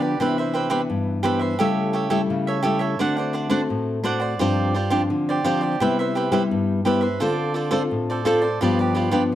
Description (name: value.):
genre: samba.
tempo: 86 BPM.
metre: 4/4.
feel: straight.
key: C major.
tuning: A4 = 440 Hz.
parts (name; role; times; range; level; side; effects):
cavaquinho; accompaniment; 0.0-9.2 s; D4 to F#5; -23 LUFS; right 4 dB; plate reverb.
nylon-string guitar; accompaniment; 0.0-9.3 s; G2 to A4; -22 LUFS; left 2 dB; none.
room: moderate studio reverb, RT60 0.6 s.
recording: dark, warm production.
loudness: -19 LUFS.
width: side -12 dB against mid.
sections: 0.0-9.3 A section.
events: none.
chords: 0.2 Cmaj9; 1.6 A7/C#; 3.0 D7; 4.4 G7sus4; 5.8 Cmaj7; 7.2 Dm7; 8.6 G7.